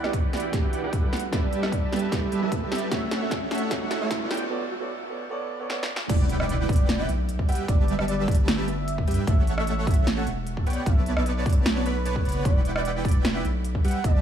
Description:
future bass; 151 BPM; 4/4; half-time; A4 = 441 Hz
warm velvety synth lead; melody; 0.0-14.2 s; B4 to G5; -34 LUFS; right 2 dB; chorus, sidechain pumping, dub echo
warm grand piano; accompaniment; 0.0-5.9 s; E3 to E5; -34 LUFS; right 4 dB; sidechain pumping, digital delay
dense compressed supersaw; riff; 0.0-14.2 s; G3 to B5; -30 LUFS; right 2 dB; sidechain pumping, low-pass filter
big-room dance drum kit; drums; 0.0-14.1 s; crash cymbal, hi-hat, rim click, snare drum; -30 LUFS; right 1 dB; high-pass filter on snare, high-pass filter on hats, high-pass filter on cymbals, high-pass filter on room
riser and impact; sound effects; 1.6-7.7 s; -35 LUFS; equal
electronic kick drum; drums; 0.1-14.1 s; -24 LUFS; equal
saturated sub bass; bass; 6.1-14.2 s; E1 to G2; -28 LUFS; equal; sidechain pumping
digital ambience; high-pass filter, small room ambience; -22 LUFS; side -9 dB against mid
0.0-6.1 A section; 6.1-14.2 B section
build-up 0.0-6.1; drum fill 0.0-4.5, 5.7-6.1; filter sweep 0.0-6.1; riser 1.6-4.5; break 4.5-6.1; drop 6.1-14.2; impact 6.1-7.7
0.0 Em9; 1.1 G69; 2.9 F#m7/A; 4.3 Bm9; 6.1 Em9; 7.5 G69; 9.3 F#m7/A; 10.7 Bm9; 12.5 Em9
0.14 0.53 0.93 | 1.33 1.73 2.12 2.52 | 2.92 3.31 3.71 4.11 | 4.51 4.90 5.30 5.70 | 6.10 6.49 6.89 7.29 | 7.68 8.08 8.48 8.88 | 9.28 9.67 10.07 10.47 | 10.86 11.26 11.66 12.06 | 12.45 12.85 13.25 13.65 | 14.04

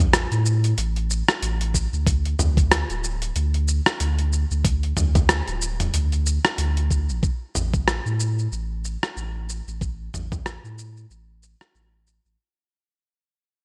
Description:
sunset chillout; 93 BPM; 4/4; swing 57% on 16ths; A4 = 440 Hz
warm sub bass; bass; 0.0-12.4 s; D1 to A2; -25 LUFS; equal
dusty soul sampler-style drum kit; drums; 0.0-12.4 s; hi-hat, rim click, shaker, toms; -26 LUFS; equal
electronic kick drum; drums; 1.7-10.4 s; -24 LUFS; equal
light reverb; bright 1980s-style digital production; -23 LUFS; mono
0.0-7.2 A section; 7.2-12.4 B section
fade-out 7.2-12.4
0.13 0.78 1.42 | 2.07 2.71 3.36 4.00 | 4.65 5.29 5.94 6.58 | 7.23 7.87 8.52 9.16 | 9.81 10.45 11.10 11.74

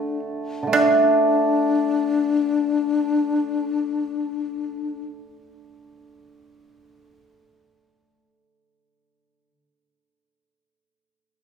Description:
chinese traditional, Chinese chamber ensemble; free time; A4 = 440 Hz
breathy mellow xiao; melody; 0.0-5.0 s; D4; -22 LUFS; left 6 dB
pipa; second line; 0.0-5.0 s; D4; -23 LUFS; right 3 dB
hammered dulcimer; accompaniment; 0.0-9.5 s; D3 to D4; -22 LUFS; right 3 dB
wet recital hall reverb, RT60 1.3 s; heard from further back in the room; -19 LUFS; side -6 dB against mid
0.7-4.8 A section
free time

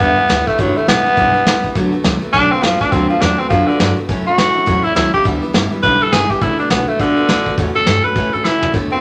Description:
rockabilly; 206 BPM; 4/4; swing 61% on 8ths; D major; A4 = 438 Hz
breathy tenor saxophone; melody; 0.0-9.0 s; D3 to B4; -17 LUFS; equal
picked steel-string acoustic guitar; accompaniment; 0.0-9.0 s; G2 to F#4; -22 LUFS; equal
upright bass; bass; 0.0-8.9 s; G1 to C#3; -26 LUFS; equal
vintage brush drum kit; drums; 0.0-8.8 s; hi-hat, kick drum, snare drum, toms; -21 LUFS; equal
moderate large studio reverb, RT60 1.3 s; -15 LUFS; mono
0.0-8.7 A section
tenor saxophone solo 0.0-8.7; drum fill 8.4
0.0 G6; 1.8 D6; 4.1 A6; 5.2 G6; 6.4 D6; 7.6 A6
0.00 0.29 | 0.58 0.88 1.17 1.46 | 1.75 2.04 2.34 2.63 | 2.92 3.21 3.50 3.79 | 4.09 4.38 4.67 4.96 | 5.25 5.54 5.83 6.12 | 6.41 6.70 6.99 7.28 | 7.58 7.87 8.16 8.45 | 8.74

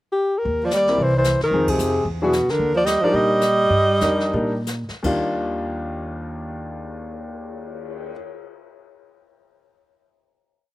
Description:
jazz, small-group swing and bop; 156-224 BPM; 4/4; swing 60% on 8ths; Eb major; A4 = 440 Hz
mellow alto saxophone; melody; 0.1-4.7 s; F#4 to Eb5; -20 LUFS; equal; slapback echo
jazz brush drum kit; drums; 0.4-8.0 s; brushed snare drum, crash cymbal, cymbal swell, hi-hat, kick drum, ride cymbal, snare drum; -32 LUFS; left 2 dB
upright bass; bass; 0.5-8.1 s; C2 to Bb2; -27 LUFS; equal
clear tenor saxophone; second line; 0.6-4.7 s; B2 to G3; -23 LUFS; right 2 dB
clear baby grand piano; accompaniment; 0.9-8.1 s; Eb2 to Bb4; -25 LUFS; left 2 dB; slapback echo
little or no reverb; recorded outdoors, with no room sound; -18 LUFS; side -17 dB against mid
0.0-0.4 pickup bar; 0.4-5.0 A section; 5.0-8.1 final chord
band accent 1.7; slowing down 2.6-5.0
0.4 Ebmaj7; 1.0 C; 1.5 Fm7; 2.1 E9; 2.6 Ebmaj7
0.18 | 0.45 0.71 0.98 1.25 | 1.52 1.79 2.05 2.32 | 2.59 2.86 3.13 3.41 | 3.71 4.01 4.33 4.67 | 5.04 5.42 5.81 6.19 | 6.57 6.96 7.34 7.72

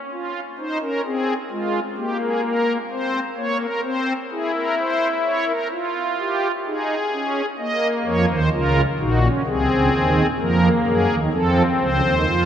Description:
classical, baroque-style 3-part fugue for pipe organ; 64 BPM; 4/4; straight; A4 = 440 Hz
pipe organ, strings celeste; solo; 0.1-12.5 s; Bb1 to Eb5; -18 LUFS; equal
wet cathedral reverb, RT60 5.6 s; in a vast, echoing space; -18 LUFS; side -9 dB against mid
0.0-12.5 A section
0.1 Fm; 2.0 N.C.; 3.8 C7; 5.7 Fm; 7.6 Bbm; 9.5 Cm7b5; 11.3 F7
| 0.11 1.04 1.97 2.90 | 3.84 4.78 5.72 6.65 | 7.58 8.52 9.45 10.39 | 11.33 12.28

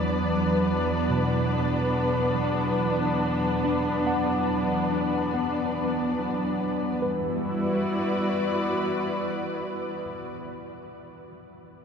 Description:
ambient; 71 BPM; 3/4; straight; E minor; A4 = 442 Hz
muted studio string section; sustained chords; 0.0-10.3 s; E2 to D5; -26 LUFS; equal
mellow tine electric piano; arpeggios; 0.0-11.8 s; B2 to F#5; -30 LUFS; left 1 dB; medium stereo tremolo, ping-pong delay
organ-like drone; drone; 0.0-10.0 s; E3 to B3; -32 LUFS; right 1 dB; ensemble chorus, built-in reverb
wet huge ambient reverb, RT60 7.6 s; -23 LUFS; side -6 dB against mid
0.0-7.0 A section; 7.0-9.6 B section
0.0 Bmadd11/E; 7.0 Em9
0.26 1.10 | 1.95 2.79 3.64 | 4.49 5.33 6.18 | 7.02 7.87 8.71

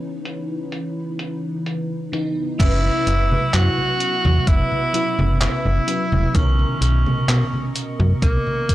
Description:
vaporwave; 64 BPM; 4/4; straight; A4 = 440 Hz
FM electric piano with soft pad layer; accompaniment; 0.0-8.7 s; B2 to B4; -27 LUFS; left 1 dB; phaser, ensemble chorus, analog delay
lush unison pad; sustained chords; 0.0-8.7 s; B2 to C#6; -30 LUFS; equal; chorus
detuned 8-bit digital drum machine; drums; 0.3-8.7 s; congas, crash cymbal, handclaps, hi-hat; -24 LUFS; equal; low-pass filter on hats, low-pass filter on cymbals, low-pass filter on perc, low-pass filter on snare, low-pass filter on room
warm tenor saxophone; melody; 2.6-8.7 s; A#3 to F#4; -23 LUFS; right 1 dB; vintage 12-bit sampler grit, tape echo
slap-like FM bass; bass; 2.6-8.4 s; E1 to B2; -18 LUFS; equal; transformer saturation
electronic kick drum; drums; 2.6-8.7 s; -17 LUFS; equal
little or no reverb; dry, gritty hardware recording; -17 LUFS; side -15 dB against mid
0.0-2.6 A section; 2.6-8.7 B section
0.0 C#m9; 2.6 F#7sus4; 6.3 Bmaj9
0.72 1.66 | 2.60 3.54 4.47 5.41 | 6.35 7.29 8.22

